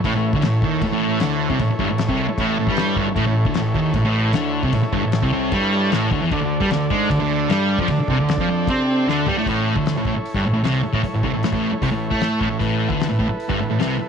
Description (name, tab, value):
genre	garage rock duo or trio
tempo	153 BPM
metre	4/4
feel	straight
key	A mixolydian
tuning	A4 = 440 Hz
part	combo organ	sustained chords	0.0-14.1 s	D4 to D5	-27 LUFS	right 1 dB	none
part	fuzz guitar	riff	0.0-14.0 s	G2 to C4	-19 LUFS	equal	distortion
part	fuzz picked electric bass	bass	0.0-14.0 s	G1 to C3	-28 LUFS	equal	overdrive
part	cloth-damped thuddy drum kit	drums	0.0-13.9 s	crash cymbal, hi-hat, kick drum, snare drum, toms	-26 LUFS	left 3 dB	none
room	light reverb, small room ambience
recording	1960s-style stereo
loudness	-17 LUFS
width	side -7 dB against mid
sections	0.0-9.5 A section; 9.5-14.1 B section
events	drum fill 9.1-9.5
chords	0.0 A; 6.3 D5; 9.5 A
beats	| 0.06 0.45 0.83 1.22 | 1.61 2.00 2.39 2.78 | 3.17 3.56 3.96 4.35 | 4.74 5.13 5.53 5.92 | 6.31 6.71 7.10 7.50 | 7.89 8.28 8.68 9.07 | 9.47 9.86 10.25 10.65 | 11.04 11.44 11.83 12.22 | 12.62 13.01 13.40 13.79